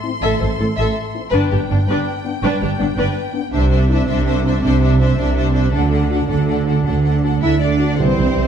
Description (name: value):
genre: cinematic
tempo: 109 BPM (dotted quarters)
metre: 6/8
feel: straight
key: unclear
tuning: A4 = 437 Hz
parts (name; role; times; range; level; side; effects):
- rich symphonic violin section; melody; 0.0-8.5 s; C5 to C6; -29 LUFS; left 5 dB; none
- dark French horn section; sustained chords; 0.0-7.9 s; B3 to F#4; -28 LUFS; left 7 dB; none
- rich symphonic violin section; second line; 0.2-8.5 s; D4 to E5; -24 LUFS; left 4 dB; none
- bright symphonic viola section; accompaniment; 0.2-8.0 s; D4 to A4; -24 LUFS; equal; none
- rich symphonic cello section; bass; 0.2-8.5 s; G2 to E4; -19 LUFS; right 2 dB; none
- rich symphonic double bass section; bass; 0.2-8.4 s; G1 to D2; -19 LUFS; right 2 dB; none
- mellow trombone section; sustained chords; 8.0-8.5 s; E3 to G3; -21 LUFS; right 2 dB; none
- mellow trumpet section; stabs; 8.0-8.5 s; C5; -24 LUFS; right 1 dB; none
room: moderate scoring stage reverb, RT60 1.5 s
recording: dark, warm production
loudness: -15 LUFS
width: side -8 dB against mid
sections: 0.0-8.0 A section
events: build-up 0.0-8.0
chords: 0.0 Am; 1.3 G; 3.5 Cadd9; 5.7 D